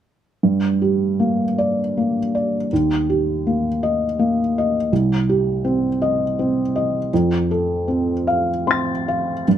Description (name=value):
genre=neoclassical minimalist piano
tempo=48-55 BPM (dotted quarters)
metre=6/8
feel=rubato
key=G minor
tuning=A4 = 438 Hz
part: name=felt-muted upright piano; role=solo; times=0.4-9.6 s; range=C2 to A6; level=-17 LUFS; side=equal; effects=none
room=light reverb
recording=none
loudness=-17 LUFS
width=side -10 dB against mid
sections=0.4-9.5 A section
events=none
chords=0.4 Gm; 2.7 Eb; 4.9 Cm; 7.1 F